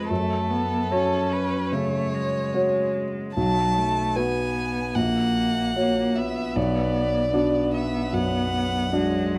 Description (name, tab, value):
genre	classical, slow romantic movement for piano quartet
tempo	75 BPM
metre	4/4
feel	rubato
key	F# minor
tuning	A4 = 440 Hz
part	rich violin	melody	0.0-9.3 s	A4 to A5	-30 LUFS	equal	none
part	clear cello	second line	0.0-9.4 s	F#3 to C#4	-30 LUFS	equal	none
part	warm grand piano	accompaniment	0.0-9.4 s	A#1 to D5	-27 LUFS	equal	none
room	light reverb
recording	dark, warm production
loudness	-24 LUFS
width	mono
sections	0.0-9.4 A section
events	none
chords	0.1 F#m; 3.4 B5; 5.0 F#/A#; 6.6 Bm